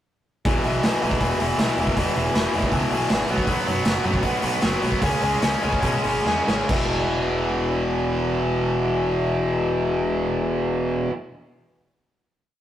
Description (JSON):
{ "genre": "punk rock", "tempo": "134-159 BPM", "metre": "4/4", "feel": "straight", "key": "E major", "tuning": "A4 = 440 Hz", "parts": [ { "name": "distorted electric guitar", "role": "riff", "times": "0.5-11.1 s", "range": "E2 to C#4", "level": "-23 LUFS", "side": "left 2 dB", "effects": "overdrive" }, { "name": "tight distorted guitar", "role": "riff", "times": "0.5-11.1 s", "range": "E2 to C#4", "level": "-27 LUFS", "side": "right 5 dB", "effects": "distortion" }, { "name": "growling picked electric bass", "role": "bass", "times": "0.5-11.1 s", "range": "E1 to B2", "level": "-30 LUFS", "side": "right 1 dB", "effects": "overdrive" }, { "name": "raw garage drum kit", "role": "drums", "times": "0.5-6.8 s", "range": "crash cymbal, hi-hat, kick drum, snare drum", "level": "-24 LUFS", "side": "right 1 dB", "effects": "none" } ], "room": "moderate stone room reverb, RT60 1.2 s", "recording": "rough rehearsal-room recording, warm saturation", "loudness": "-20 LUFS", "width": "side -11 dB against mid", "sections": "0.5-6.7 verse; 6.7-10.3 final chord", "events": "slowing down 3.5-6.7; drum fill 6.3-6.7", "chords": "0.5 E5; 3.3 B5; 5.0 C#5; 6.7 E5" }